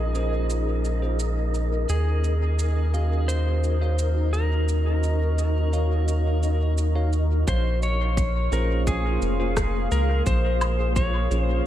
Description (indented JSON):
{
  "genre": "ambient dub",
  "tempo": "86 BPM",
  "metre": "4/4",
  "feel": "straight",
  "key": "Bb minor",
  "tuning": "A4 = 440 Hz",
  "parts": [
    { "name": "clean lap steel guitar", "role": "melody", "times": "0.0-11.6 s", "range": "Ab4 to Db5", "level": "-31 LUFS", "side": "left 1 dB", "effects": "dub echo" },
    { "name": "granular cloud pad", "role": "sustained chords", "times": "0.0-11.7 s", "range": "Bb3 to F5", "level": "-31 LUFS", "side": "left 1 dB", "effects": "built-in reverb" },
    { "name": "soft dub sub bass", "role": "bass", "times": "0.0-11.6 s", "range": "F1 to Eb2", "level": "-22 LUFS", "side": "equal", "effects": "none" },
    { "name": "wind-like tuned noise texture", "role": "texture", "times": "0.0-7.5 s", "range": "Eb4 to Eb5", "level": "-36 LUFS", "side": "right 2 dB", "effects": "built-in reverb" },
    { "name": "bell-like tine electric piano", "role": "stabs", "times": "0.1-11.7 s", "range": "Db4 to F5", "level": "-35 LUFS", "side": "right 2 dB", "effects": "medium stereo tremolo, dub echo" },
    { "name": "electronic shaker, rim click and woodblock", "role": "drums", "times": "0.1-11.5 s", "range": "none", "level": "-34 LUFS", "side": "right 1 dB", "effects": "dub echo" },
    { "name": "electronic kick drum", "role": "drums", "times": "7.5-11.1 s", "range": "none", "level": "-26 LUFS", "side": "equal", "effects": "none" }
  ],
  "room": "little or no reverb",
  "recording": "none",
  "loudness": "-21 LUFS",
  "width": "side -12 dB against mid",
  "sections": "0.0-7.5 A section; 7.5-11.7 B section",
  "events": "none",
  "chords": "0.0 Bbm7; 1.9 Ebm7; 7.5 Bbm7"
}